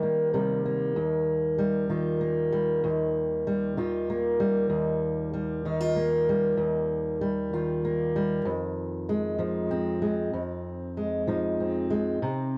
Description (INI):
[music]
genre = folk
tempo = 64 BPM (dotted quarters)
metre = 6/8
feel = straight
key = unclear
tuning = A4 = 445 Hz
[part]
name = fingerpicked steel-string acoustic guitar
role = solo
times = 0.0-12.6 s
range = Eb2 to G4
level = -28 LUFS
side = equal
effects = none
[sound]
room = light reverb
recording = worn, warbling old tape, cassette tape, warbly pitch drift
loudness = -28 LUFS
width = mono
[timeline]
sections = 1.0-12.6 A section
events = none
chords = 0.0 Eb; 1.0 Ebadd9; 8.5 Fm7